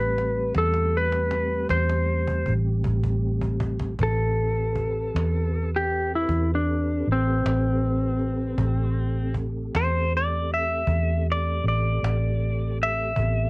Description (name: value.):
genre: slow blues.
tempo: 52 BPM (dotted quarters).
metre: 12/8.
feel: straight.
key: A minor.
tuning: A4 = 439 Hz.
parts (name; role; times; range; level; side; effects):
clean lap steel guitar; melody; 0.0-13.5 s; C4 to E5; -25 LUFS; left 1 dB; cassette tape.
mellow tonewheel organ; sustained chords; 0.0-13.5 s; G3 to B4; -33 LUFS; right 1 dB; slow rotary speaker, chorus vibrato, cassette tape.
vintage muted fingered electric bass; bass; 0.0-13.5 s; A1 to E2; -24 LUFS; equal; none.
cajon; drums; 0.0-13.3 s; none; -33 LUFS; equal; cassette tape.
room: light reverb.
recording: home recording on cassette.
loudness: -22 LUFS.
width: side -27 dB against mid.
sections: 0.0-4.0 A section; 4.0-13.5 B section.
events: drum fill 0.0-4.0; electric slide guitar solo 4.0-13.5.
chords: 0.0 Am9.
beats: 0.56 1.71 2.85 | 4.00 5.15 6.30 7.44 | 8.59 9.74 10.88 12.03 | 13.17.